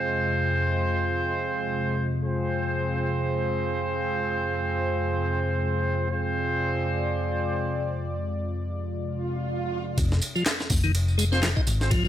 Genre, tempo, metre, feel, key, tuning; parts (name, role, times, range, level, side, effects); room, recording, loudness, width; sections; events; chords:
breakbeat, breaks; free time; A4 = 444 Hz
lush unison pad; sustained chords; 0.0-10.0 s; F2 to Eb5; -28 LUFS; left 2 dB; chorus, vintage 12-bit sampler grit, sidechain pumping
warm brass ensemble; stabs; 0.0-8.0, 11.3-11.9 s; C4 to C5; -27 LUFS; right 2 dB; tape echo
swell; sound effects; 9.1-10.0 s; -33 LUFS; right 5 dB
hollow-body short-scale picked electric bass; bass; 10.0-12.1 s; F1 to Ab1; -24 LUFS; left 1 dB
breakbeat sampler-style drum kit; drums; 10.0-12.0 s; hi-hat, kick drum, ride cymbal, snare drum; -26 LUFS; equal
electronic tambourine and handclaps; drums; 10.0-12.1 s; -32 LUFS; equal; low-pass filter on perc, low-pass filter on snare, low-pass filter on room
tonewheel organ; riff; 10.4-12.1 s; Eb3 to Eb4; -28 LUFS; left 2 dB; overdrive, slow rotary speaker
light reverb, digital ambience; -24 LUFS; side -11 dB against mid
0.0-10.0 A section; 10.0-12.1 B section
filter sweep on analog synth pad 0.0-10.0; break 8.0-10.0; swell 9.1-10.0; drop 10.0-12.1
0.0 Fm